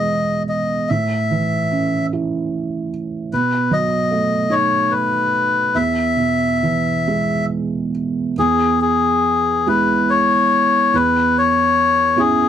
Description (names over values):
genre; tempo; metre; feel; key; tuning
celtic folk, Celtic slow air; 45-50 BPM (dotted quarters); 6/8; rubato; E major; A4 = 440 Hz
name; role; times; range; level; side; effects
melodica; melody; 0.0-12.5 s; G#4 to E5; -16 LUFS; left 4 dB; none
felt-muted upright piano; accompaniment; 0.0-12.5 s; E2 to E4; -19 LUFS; right 5 dB; none
room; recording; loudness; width
little or no reverb; dry, close 1970s-style studio recording; -15 LUFS; side -9 dB against mid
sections
0.0-8.4 A section; 8.4-12.5 B section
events
none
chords
0.0 E; 0.9 A; 3.3 B7; 5.8 E; 10.9 C#m7/E